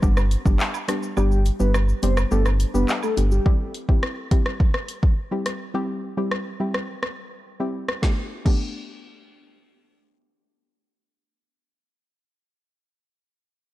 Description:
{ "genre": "dancehall", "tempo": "105 BPM", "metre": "4/4", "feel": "straight", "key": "G major", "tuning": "A4 = 440 Hz", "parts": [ { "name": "soft round pluck", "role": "accompaniment", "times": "0.0-11.8 s", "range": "G3 to G4", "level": "-28 LUFS", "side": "left 1 dB", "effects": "chorus" }, { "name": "sub bass with octave", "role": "bass", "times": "0.0-3.4 s", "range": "F#1 to G1", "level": "-20 LUFS", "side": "equal", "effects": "none" }, { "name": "deep house drum kit", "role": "drums", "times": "0.0-8.6 s", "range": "crash cymbal, handclaps, hi-hat, kick drum, rim click, shaker, snare drum", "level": "-22 LUFS", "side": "equal", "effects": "none" }, { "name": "woodblock and cabasa", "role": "percussion", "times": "0.2-3.3 s", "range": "none", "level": "-38 LUFS", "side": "right 10 dB", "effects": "none" }, { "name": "soft octave-layered synth lead", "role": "melody", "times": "1.2-3.4 s", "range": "G4 to C5", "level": "-28 LUFS", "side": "equal", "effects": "chorus, phaser, tape echo" } ], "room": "little or no reverb", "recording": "dark, warm production", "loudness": "-20 LUFS", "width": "side -16 dB against mid", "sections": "0.0-3.5 A section; 3.5-8.0 B section; 8.0-10.3 C section", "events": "kick muted 1.2-3.5", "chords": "0.0 G; 3.5 C; 8.0 Gadd9", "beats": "0.03 0.60 | 1.17 1.74 2.31 2.89 | 3.46 4.03 4.60 5.17 | 5.74 6.31 6.89 7.46 | 8.03 8.60 9.17 9.74" }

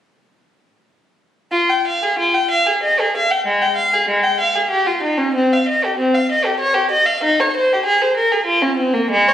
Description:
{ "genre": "classical, baroque-style suite movement for unaccompanied violin", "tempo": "95 BPM", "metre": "3/4", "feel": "rubato", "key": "F minor", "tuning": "A4 = 435 Hz", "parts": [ { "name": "rich violin", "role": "solo", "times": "1.5-9.3 s", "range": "Ab3 to G5", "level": "-14 LUFS", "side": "equal", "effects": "none" } ], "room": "wet recital hall reverb, RT60 1.6 s", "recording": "recorded on a phone in the room, studio reverb, compression", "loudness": "-14 LUFS", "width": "side -10 dB against mid", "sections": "1.5-9.3 A section", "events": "none", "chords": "none", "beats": "| 1.51 2.19 2.83 | 3.45 4.09 4.72 | 5.36 6.00 6.62 | 7.23 7.85 8.48 | 9.13" }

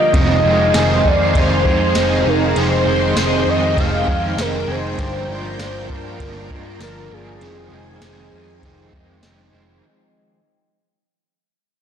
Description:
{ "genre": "dream pop", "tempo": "99 BPM", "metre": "4/4", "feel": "straight", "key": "F dorian", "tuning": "A4 = 440 Hz", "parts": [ { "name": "warm velvety synth lead", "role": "melody", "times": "0.0-9.2 s", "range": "Ab4 to F5", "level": "-20 LUFS", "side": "left 1 dB", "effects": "chorus, tape echo" }, { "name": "string machine, full ensemble", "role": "sustained chords", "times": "0.0-9.8 s", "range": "Eb4 to Ab5", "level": "-23 LUFS", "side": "right 2 dB", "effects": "phaser, ensemble chorus" }, { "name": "electric guitar through a small old amp", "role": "arpeggios", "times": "0.0-10.4 s", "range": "F2 to Eb4", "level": "-25 LUFS", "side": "left 4 dB", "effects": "analog chorus, tape echo" }, { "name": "overdriven semi-hollow guitar", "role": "accompaniment", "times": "0.1-9.8 s", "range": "F2 to D4", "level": "-23 LUFS", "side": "right 5 dB", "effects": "tremolo, analog chorus" }, { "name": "vintage muted picked electric bass", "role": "bass", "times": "0.1-9.8 s", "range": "F1 to G2", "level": "-23 LUFS", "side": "equal", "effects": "transformer saturation" }, { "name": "soft vintage rhythm box", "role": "drums", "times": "0.1-9.4 s", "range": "kick drum, ride cymbal, snare drum, tambourine", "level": "-21 LUFS", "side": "equal", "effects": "none" }, { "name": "celesta", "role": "texture", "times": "0.1-7.7 s", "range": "D5 to D6", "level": "-33 LUFS", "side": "right 2 dB", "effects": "tape echo" } ], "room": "moderate lush hall reverb, RT60 1.8 s, digital ambience", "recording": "blown-out, overdriven recording, overdrive", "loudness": "-14 LUFS", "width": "side -8 dB against mid", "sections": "0.0-9.8 A section", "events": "fade-out 0.0-9.8", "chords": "0.1 Fm7; 5.0 Gm7; 7.4 Fm7", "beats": "| 0.14 0.74 1.35 1.96 | 2.56 3.17 3.77 4.38 | 4.99 5.59 6.20 6.80 | 7.41 8.02 8.62 9.23" }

